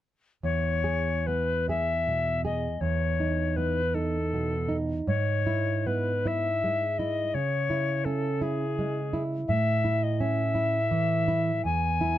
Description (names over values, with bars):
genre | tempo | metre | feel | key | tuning
romantic duo for recorder and classical guitar | 46-57 BPM (dotted quarters) | 6/8 | rubato | E major | A4 = 439 Hz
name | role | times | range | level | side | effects
mellow alto recorder | melody | 0.4-12.2 s | G#4 to G#5 | -28 LUFS | left 4 dB | none
nylon-string guitar | accompaniment | 0.4-12.2 s | E2 to G#4 | -27 LUFS | right 2 dB | none
room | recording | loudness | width
little or no reverb | close, detailed microphones | -25 LUFS | side -13 dB against mid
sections
0.4-12.2 A section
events
none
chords
0.4 E; 2.8 B7/E; 5.1 E/G#; 7.3 C#m; 9.5 A; 11.7 E